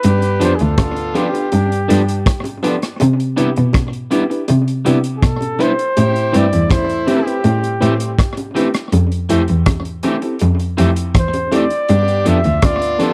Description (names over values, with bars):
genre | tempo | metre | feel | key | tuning
lovers rock reggae | 81 BPM | 4/4 | straight | unclear | A4 = 441 Hz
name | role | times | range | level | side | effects
breathy flugelhorn | melody | 0.0-13.1 s | G4 to E5 | -22 LUFS | equal | tape echo
warm horn section | second line | 0.0-13.1 s | G3 to G4 | -27 LUFS | equal | none
rich cello | bass | 0.0-12.9 s | D2 to C3 | -18 LUFS | equal | none
crunchy breakbeat drum kit | drums | 0.0-13.1 s | hi-hat, kick drum, rim click | -21 LUFS | equal | slapback echo
bongos | percussion | 0.0-13.1 s | none | -27 LUFS | equal | slapback echo
mellow FM electric piano | accompaniment | 0.4-13.1 s | B3 to B4 | -21 LUFS | equal | chorus
electric guitar at the edge of break-up | stabs | 0.4-13.1 s | E3 to G4 | -24 LUFS | equal | spring reverb
room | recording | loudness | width
light reverb | dry, close 1970s-style studio recording | -16 LUFS | mono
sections
0.0-13.1 A section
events
none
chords
0.0 G7; 3.0 Cmaj7; 6.0 Am7; 8.9 Fmaj9; 11.9 G7